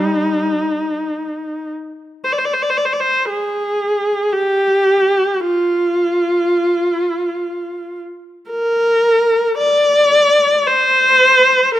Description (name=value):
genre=classical, free, expressive piece for unaccompanied viola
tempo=57 BPM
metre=3/4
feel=rubato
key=Eb major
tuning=A4 = 440 Hz
part: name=warm viola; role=solo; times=0.0-11.8 s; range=G3 to D5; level=-13 LUFS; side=equal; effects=none
room=light reverb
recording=close, detailed microphones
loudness=-13 LUFS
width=side -13 dB against mid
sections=0.0-11.8 A section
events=none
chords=none